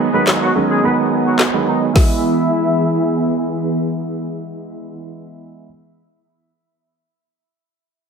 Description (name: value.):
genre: dance-pop.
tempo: 107 BPM.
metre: 4/4.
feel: straight.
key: E major.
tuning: A4 = 439 Hz.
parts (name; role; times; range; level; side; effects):
clear grand piano; accompaniment; 0.0-5.7 s; D#3 to E4; -20 LUFS; right 5 dB; sidechain pumping, low-pass filter.
string machine, violins; sustained chords; 0.0-5.0 s; E3 to D#5; -20 LUFS; equal; ensemble chorus, sidechain pumping, low-pass filter.
clear horn section; melody; 0.1-3.6 s; F#3 to E5; -22 LUFS; left 1 dB; sidechain pumping, low-pass filter, tape echo.
deep house drum kit; drums; 0.3-2.1 s; handclaps, hi-hat, kick drum, snare drum; -15 LUFS; left 1 dB; none.
room: moderate plate reverb, RT60 1.6 s.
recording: dense, heavily limited modern master.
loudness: -14 LUFS.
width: side -6 dB against mid.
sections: 0.0-2.0 A section; 2.0-4.2 B section.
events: filter sweep 0.0-2.0.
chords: 0.0 B6; 2.0 E.